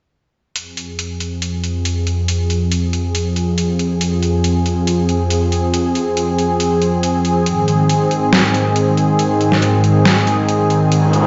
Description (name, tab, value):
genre	heavy wobble dubstep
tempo	139 BPM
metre	4/4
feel	half-time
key	F minor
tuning	A4 = 441 Hz
part	supersaw pad	sustained chords	0.6-11.3 s	F2 to Ab4	-17 LUFS	equal	low-pass filter
part	dubstep drum kit	drums	0.6-11.2 s	hi-hat, snare drum	-23 LUFS	equal	overdrive
part	riser	sound effects	11.0-11.3 s	none	-21 LUFS	equal	none
room	moderate digital room reverb, RT60 1.2 s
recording	played on a big sound system in a bare room, stone room reverb, nothing above 7.7 kHz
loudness	-16 LUFS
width	mono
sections	0.6-11.3 A section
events	filter sweep on supersaw synth 0.6-11.3; riser 11.0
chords	0.6 Fm; 7.5 Ab